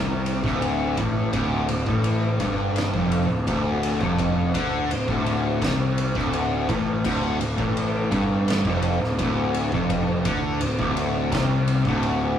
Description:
stoner and doom metal; 84 BPM; 4/4; straight; D minor; A4 = 441 Hz
fuzz guitar; riff; 0.0-12.4 s; D2 to D3; -23 LUFS; left 1 dB; distortion
fuzz picked electric bass; bass; 0.0-12.3 s; D1 to D2; -26 LUFS; equal; overdrive
oversized low-tuned drum kit; drums; 0.3-12.2 s; crash cymbal, kick drum, ride cymbal, snare drum; -28 LUFS; equal
moderate booth ambience, RT60 0.3 s; rough rehearsal-room recording, warm saturation; -21 LUFS; side -9 dB against mid
0.0-12.4 A section
0.0 Dm
0.61 | 1.33 2.04 2.76 3.47 | 4.19 4.90 5.62 6.33 | 7.04 7.76 8.47 9.19 | 9.90 10.61 11.32 12.03

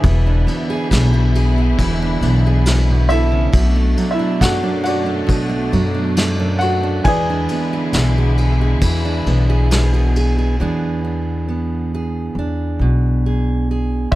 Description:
acoustic folk-pop ballad; 68 BPM; 4/4; straight; A4 = 439 Hz
felt-muted upright piano; melody; 0.0-8.8, 14.1-14.2 s; E4 to G#5; -22 LUFS; equal
fingerpicked steel-string acoustic guitar; accompaniment; 0.0-14.2 s; F#2 to A4; -21 LUFS; right 3 dB
muted studio string section; sustained chords; 0.0-10.6 s; B2 to E4; -27 LUFS; left 1 dB
upright bass; bass; 0.0-14.2 s; E1 to F#2; -17 LUFS; left 1 dB
vintage brush drum kit; drums; 0.0-14.2 s; hi-hat, kick drum, ride cymbal, snare drum; -22 LUFS; equal
little or no reverb; close, detailed microphones; -14 LUFS; side -16 dB against mid
0.0-10.6 A section; 10.6-14.1 B section
0.0 E7; 3.5 Bm7; 7.0 E7
| 0.04 0.92 1.79 2.66 | 3.54 4.41 5.29 6.17 | 7.05 7.93 8.81 9.71 | 10.60 11.48 12.36 13.24 | 14.12

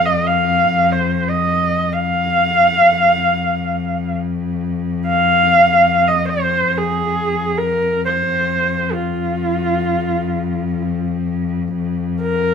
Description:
mongolian traditional, Mongolian folk; free time; F yu mode; A4 = 441 Hz
warm horsehead fiddle; melody; 0.0-12.5 s; F4 to F5; -15 LUFS; right 1 dB
warm cello; drone; 0.0-12.5 s; F2; -21 LUFS; left 4 dB
wet studio reverb, RT60 0.7 s; band playing live in one room; -15 LUFS; side -7 dB against mid
0.0-12.5 A section
free time

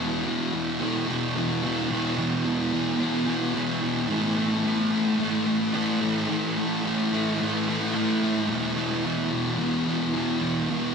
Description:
rock; 109 BPM; 4/4; straight; A4 = 439 Hz
thick fuzz guitar; solo; 0.0-10.9 s; E2 to A3; -23 LUFS; equal; distortion, wide subtle chorus, analog delay
wet huge ambient reverb, RT60 4.8 s; dreamy mix soaked in reverb; -23 LUFS; side -6 dB against mid
0.0-8.5 A section; 8.5-10.9 A section
0.0 E5; 4.1 A5; 8.5 E5
0.25 0.80 1.35 | 1.90 2.45 3.00 3.55 | 4.10 4.65 5.20 5.75 | 6.30 6.85 7.39 7.94 | 8.49 9.04 9.59 10.13 | 10.68

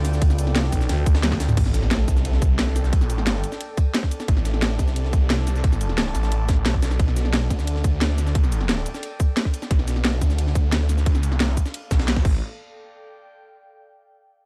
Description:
dark technical drum and bass; 177 BPM; 4/4; straight; A minor; A4 = 438 Hz
deep dark ambient pad; sustained chords; 0.0-1.5 s; B3 to G5; -41 LUFS; equal; chorus, built-in reverb, sidechain pumping
growling FM bass; bass; 0.0-1.6 s; B1 to D2; -23 LUFS; equal
drum and bass drum kit; drums; 0.0-12.3 s; cabasa, crash cymbal, hi-hat, ride cymbal, snare drum, toms; -28 LUFS; equal; overdrive
jungle sampler-style drum kit; drums; 0.0-12.2 s; ride cymbal, snare drum; -36 LUFS; equal
airy breathy pad; texture; 0.0-13.7 s; A4 to A5; -39 LUFS; equal; chorus, sidechain pumping
electronic kick drum; drums; 0.2-12.3 s; -22 LUFS; equal; overdrive
snarling distorted saw bass; bass; 1.6-12.4 s; A1 to D2; -24 LUFS; equal; distortion, overdrive, sidechain pumping
impact; sound effects; 1.6-2.9 s; -29 LUFS; equal
little or no reverb; dark, warm production; -21 LUFS; mono
0.0-1.6 A section; 1.6-12.4 B section; 12.4-13.8 C section
drop 0.0-1.6; drum fill 1.2-1.6; fade-out on analog synth pad 1.6-12.4; impact 1.6-2.9
0.0 Bdim; 1.6 Am7; 7.0 Bdim; 12.2 Asus4; 12.4 A7sus4
| 0.22 0.55 0.89 1.23 | 1.57 1.91 2.25 2.59 | 2.93 3.27 3.60 3.94 | 4.28 4.62 4.96 5.30 | 5.64 5.98 6.32 6.66 | 7.00 7.33 7.67 8.01 | 8.35 8.69 9.03 9.37 | 9.71 10.05 10.38 10.72 | 11.06 11.40 11.74 12.08 | 12.42 12.76 13.10 13.44

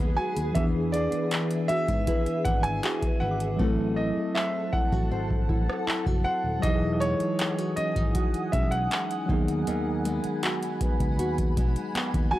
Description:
contemporary R&B; 79 BPM; 4/4; straight; E major; A4 = 440 Hz
tine electric piano; accompaniment; 0.0-12.4 s; E3 to A4; -32 LUFS; right 1 dB; medium stereo tremolo
granular cloud pad; sustained chords; 0.0-12.4 s; G#4 to D#6; -37 LUFS; right 1 dB; built-in reverb, sidechain pumping
nylon-string guitar; arpeggios; 0.0-12.4 s; D#3 to C5; -32 LUFS; left 2 dB; tape echo
fingered electric bass; bass; 0.0-12.3 s; D#1 to G#2; -30 LUFS; equal
soft synth bell; texture; 0.0-12.4 s; C#4 to D#6; -39 LUFS; left 1 dB; chorus, tape echo
warm concert grand piano; melody; 0.2-12.4 s; C#5 to G#5; -30 LUFS; right 1 dB; tape echo
booming analog drum machine; drums; 0.4-12.3 s; handclaps, hi-hat, kick drum, rim click; -27 LUFS; equal
little or no reverb; dry, gritty hardware recording; -24 LUFS; side -15 dB against mid
0.0-12.4 A section
hi-hats muted 3.6-6.6
0.0 G#m7; 0.6 E7; 3.6 Am6; 6.6 Emaj9; 9.3 G#m7
| 0.56 1.31 2.08 2.83 | 3.59 4.35 5.11 5.87 | 6.63 7.39 8.15 8.91 | 9.67 10.43 11.19 11.95

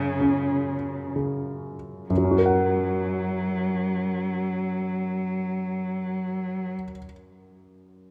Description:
classical, slow romantic movement for piano quartet; 35 BPM; 4/4; rubato; F# major; A4 = 443 Hz
rich cello; second line; 0.0-6.8 s; C#3 to F#3; -30 LUFS; equal
clear grand piano; accompaniment; 0.0-8.1 s; F#2 to F#5; -28 LUFS; equal
moderate concert hall reverb, RT60 2.4 s; close, detailed microphones; -26 LUFS; mono
0.0-2.1 A section; 2.1-8.1 B section
slowing down 0.0-2.1
0.0 F#5; 2.1 F#
0.20 | 2.10 3.80 5.51 7.22

